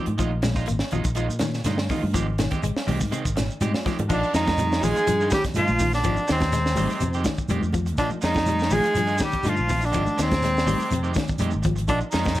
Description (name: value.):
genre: afrobeat.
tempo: 123 BPM.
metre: 4/4.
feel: straight.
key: Bb mixolydian.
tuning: A4 = 439 Hz.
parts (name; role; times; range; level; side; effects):
semi-hollow electric guitar; arpeggios; 0.0-12.3 s; C3 to Bb3; -31 LUFS; left 7 dB; none.
electric guitar at the edge of break-up; stabs; 0.0-12.3 s; Eb3 to G4; -33 LUFS; right 6 dB; spring reverb.
fingered electric bass; bass; 0.1-12.4 s; Ab1 to Bb2; -26 LUFS; equal; none.
tight funk drum kit; drums; 0.1-12.4 s; crash cymbal, hi-hat, kick drum, snare drum; -28 LUFS; equal; none.
congas; percussion; 0.1-12.4 s; none; -30 LUFS; right 1 dB; none.
shekere; percussion; 0.2-12.4 s; none; -33 LUFS; right 2 dB; none.
breathy tenor saxophone; melody; 4.1-12.4 s; C4 to Ab4; -25 LUFS; equal; none.
raspy baritone saxophone; second line; 4.1-12.4 s; C3 to Ab3; -34 LUFS; left 3 dB; none.
trombone with bucket mute; second line; 4.1-12.4 s; C4 to Ab4; -32 LUFS; right 4 dB; none.
room: light reverb.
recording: none.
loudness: -21 LUFS.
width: side -15 dB against mid.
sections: 0.0-4.1 A section; 4.1-12.4 B section.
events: drum fill 3.7-4.1.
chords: 0.2 Bb7sus4; 2.1 Abmaj7; 4.1 Bb7sus4; 6.0 Abmaj7; 8.0 Bb7sus4; 9.9 Abmaj7; 11.9 Bb7sus4.